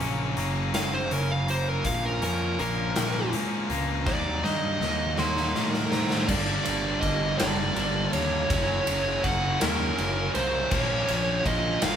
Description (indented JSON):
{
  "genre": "quiet-loud alternative rock",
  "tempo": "54 BPM (dotted quarters)",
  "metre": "6/8",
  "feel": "straight",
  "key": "unclear",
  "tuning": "A4 = 440 Hz",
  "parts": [
    { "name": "twangy electric guitar", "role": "arpeggios", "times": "0.0-6.8 s", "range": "F#2 to Eb4", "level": "-35 LUFS", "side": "left 6 dB", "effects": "none" },
    { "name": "scooped high-gain guitar", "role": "riff", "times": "0.0-12.0 s", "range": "F#2 to Eb4", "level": "-33 LUFS", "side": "left 7 dB", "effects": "distortion" },
    { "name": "thick fuzz guitar", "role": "riff", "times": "0.0-12.0 s", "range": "F#2 to Eb4", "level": "-32 LUFS", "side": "right 5 dB", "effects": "distortion" },
    { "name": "fuzz picked electric bass", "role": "bass", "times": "0.0-12.0 s", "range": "F#1 to A2", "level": "-30 LUFS", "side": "equal", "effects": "overdrive" },
    { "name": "big rock drum kit", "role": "drums", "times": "0.0-12.0 s", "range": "crash cymbal, hi-hat, kick drum, ride cymbal, snare drum", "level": "-30 LUFS", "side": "left 1 dB", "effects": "none" },
    { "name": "fuzz lead guitar", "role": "melody", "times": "0.7-12.0 s", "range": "A#4 to C6", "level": "-29 LUFS", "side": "right 2 dB", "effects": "distortion" },
    { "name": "high-gain distorted guitar", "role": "riff", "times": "6.3-12.0 s", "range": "F#2 to Bb3", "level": "-33 LUFS", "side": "equal", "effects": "distortion" }
  ],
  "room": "moderate large studio reverb, RT60 1.3 s",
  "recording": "band playing live in one room",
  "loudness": "-23 LUFS",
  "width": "side -8 dB against mid",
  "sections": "0.0-6.3 A section; 6.3-12.0 B section",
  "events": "lead electric guitar solo 0.0-6.3; drum fill 4.1-6.3",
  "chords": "0.0 F#; 1.9 Bbm; 4.1 Ebm; 6.3 Gm; 8.5 F#; 10.7 Bbm"
}